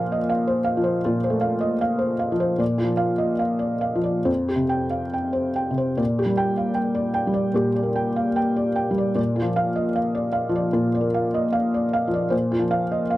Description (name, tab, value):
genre	neoclassical minimalist piano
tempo	69-79 BPM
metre	4/4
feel	rubato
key	Bb major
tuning	A4 = 440 Hz
part	felt-muted upright piano	solo	0.0-13.2 s	F2 to G5	-20 LUFS	equal	none
room	little or no reverb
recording	dry, close 1970s-style studio recording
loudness	-20 LUFS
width	side -16 dB against mid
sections	0.0-6.0 A section; 6.0-13.2 A section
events	none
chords	0.0 F/Bb; 2.6 Bb; 4.3 Fsus2; 6.0 Gm/Bb; 9.2 Bb; 12.3 F5/Bb